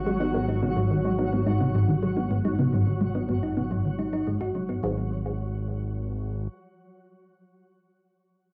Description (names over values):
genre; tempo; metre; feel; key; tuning
ambient, sequencer-driven space music; 107 BPM; 4/4; straight; G# minor; A4 = 440 Hz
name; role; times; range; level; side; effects
fat analog bass; bass; 0.0-6.5 s; G#1; -33 LUFS; equal; none
twinkling granular texture; texture; 0.0-4.8 s; F#3 to F#4; -35 LUFS; equal; built-in reverb, cassette tape, plate reverb
thumb-piano-like synth pluck; arpeggios; 0.1-5.1 s; F#3 to F#4; -33 LUFS; equal; chorus, cassette tape, tape echo, plate reverb
resonant blip pluck; riff; 0.1-5.1 s; G#2 to D#4; -29 LUFS; equal; phaser, cassette tape, tape echo
room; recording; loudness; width
wet studio reverb, RT60 0.6 s; home recording on cassette; -26 LUFS; mono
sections
0.0-4.8 A section; 4.8-7.1 B section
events
filter sweep on synth arpeggio sound 0.0-4.8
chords
0.0 G#m7; 4.8 N.C.